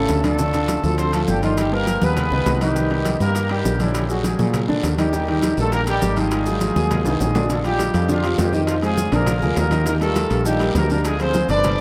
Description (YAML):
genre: latin, salsa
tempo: 203 BPM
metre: 4/4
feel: straight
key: unclear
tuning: A4 = 442 Hz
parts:
  - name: clear horn section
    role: melody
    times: 0.0-11.8 s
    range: E3 to D5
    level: -26 LUFS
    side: equal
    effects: none
  - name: warm concert grand piano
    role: accompaniment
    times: 0.0-11.7 s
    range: C#3 to Eb5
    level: -25 LUFS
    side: equal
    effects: none
  - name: woody fretless electric bass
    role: bass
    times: 0.0-11.8 s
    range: G1 to Bb2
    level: -25 LUFS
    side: equal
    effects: none
  - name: bongos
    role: percussion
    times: 0.1-11.8 s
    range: none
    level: -34 LUFS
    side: equal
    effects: none
  - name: congas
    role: percussion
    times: 0.1-11.8 s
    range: none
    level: -30 LUFS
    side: equal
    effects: none
  - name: guiro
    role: percussion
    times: 0.1-11.8 s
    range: none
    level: -40 LUFS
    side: equal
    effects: none
  - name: maracas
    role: percussion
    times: 0.1-11.8 s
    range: none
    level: -40 LUFS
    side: equal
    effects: none
  - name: timbales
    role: percussion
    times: 0.1-11.8 s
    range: none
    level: -34 LUFS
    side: equal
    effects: none
room: wet cathedral reverb, RT60 5.3 s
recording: in a vast, echoing space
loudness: -20 LUFS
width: mono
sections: 0.0-7.5 A section; 7.5-11.8 B section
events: drum fill 7.1-7.5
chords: 0.4 Dm; 1.6 Gaug; 2.8 Cm9; 3.9 Bb7b13; 5.1 Eb; 6.3 Ab7sus2; 7.5 Bb6; 8.7 Fm7; 9.3 Bb7; 9.9 Ebmaj7; 11.0 Dm7b5